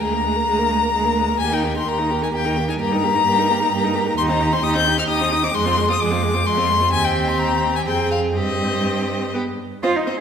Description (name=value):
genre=quick classical-period movement for string quartet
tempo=130 BPM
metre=3/4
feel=rubato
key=Eb major, C minor from 4.2 s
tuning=A4 = 441 Hz
part: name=clear violin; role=melody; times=0.0-10.2 s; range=Eb5 to G6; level=-20 LUFS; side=left 5 dB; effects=none
part: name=rich violin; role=second line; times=0.0-10.1 s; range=Eb4 to C5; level=-26 LUFS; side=equal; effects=none
part: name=warm viola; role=accompaniment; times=0.0-10.1 s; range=Ab3 to Eb4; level=-25 LUFS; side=right 3 dB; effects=none
part: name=rich cello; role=bass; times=0.0-10.2 s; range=D2 to F4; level=-23 LUFS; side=right 3 dB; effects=none
room=wet recital hall reverb, RT60 1.5 s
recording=recorded in a church or concert hall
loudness=-17 LUFS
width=side -7 dB against mid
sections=0.0-9.8 A section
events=none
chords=0.0 Bb7/D; 1.4 Eb; 2.8 Eb/G; 4.2 Cm/Eb; 5.5 Fm; 6.9 Cm/Eb; 7.9 Fm; 8.4 Cm/G; 9.3 N.C.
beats=| 0.01 0.47 0.94 | 1.40 1.87 2.33 | 2.79 3.26 3.71 | 4.17 4.63 5.08 | 5.54 6.00 6.47 | 6.93 7.40 7.87 | 8.36 8.86 9.35 | 9.83